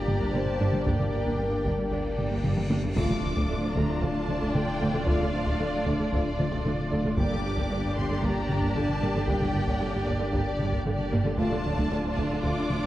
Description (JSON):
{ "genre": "cinematic, hybrid orchestral and electronic film score", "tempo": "114 BPM", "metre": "4/4", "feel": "straight", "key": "G minor", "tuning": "A4 = 440 Hz", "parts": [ { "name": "rich studio violin section", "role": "melody", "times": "0.0-12.9 s", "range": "D5 to D6", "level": "-38 LUFS", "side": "left 3 dB", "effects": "none" }, { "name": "rich symphonic violin section", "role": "second line", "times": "0.0-12.9 s", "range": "F4 to D5", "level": "-36 LUFS", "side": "left 1 dB", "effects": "none" }, { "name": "mellow French horn section", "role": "sustained chords", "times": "0.0-12.6 s", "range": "A3 to C5", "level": "-35 LUFS", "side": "left 2 dB", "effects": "none" }, { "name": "warm analog pad", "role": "sustained chords", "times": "0.0-12.9 s", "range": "A3 to D5", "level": "-34 LUFS", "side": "equal", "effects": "chorus" }, { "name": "dark detuned saw bass", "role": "bass", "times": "0.0-12.9 s", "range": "D1 to G1", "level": "-35 LUFS", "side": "equal", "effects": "none" }, { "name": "warm symphonic viola section", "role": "accompaniment", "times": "0.1-12.9 s", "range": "D3 to D4", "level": "-33 LUFS", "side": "equal", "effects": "none" }, { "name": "clear symphonic double bass section", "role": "bass", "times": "0.1-12.8 s", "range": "G1 to D2", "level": "-33 LUFS", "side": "right 2 dB", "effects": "none" }, { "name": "warm symphonic cello section", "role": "bass", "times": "0.1-12.9 s", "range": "D2 to G2", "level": "-33 LUFS", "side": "right 2 dB", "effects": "none" }, { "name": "taiko ensemble", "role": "drums", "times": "0.1-12.9 s", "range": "none", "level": "-31 LUFS", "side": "equal", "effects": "none" }, { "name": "cymbal swell and impact", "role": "sound effects", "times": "2.3-5.1 s", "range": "none", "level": "-36 LUFS", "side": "equal", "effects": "none" } ], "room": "moderate scoring stage reverb, RT60 2.0 s", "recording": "worn, warbling old tape, cassette tape, warbly pitch drift", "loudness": "-24 LUFS", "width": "side -14 dB against mid", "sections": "0.0-3.0 A section; 3.0-12.9 B section", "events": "cymbal swell 2.3-3.0; drum fill 2.4-3.0; impact 3.0-5.1", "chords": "0.0 Gm; 3.0 Dm; 7.2 Gm; 11.4 Dm" }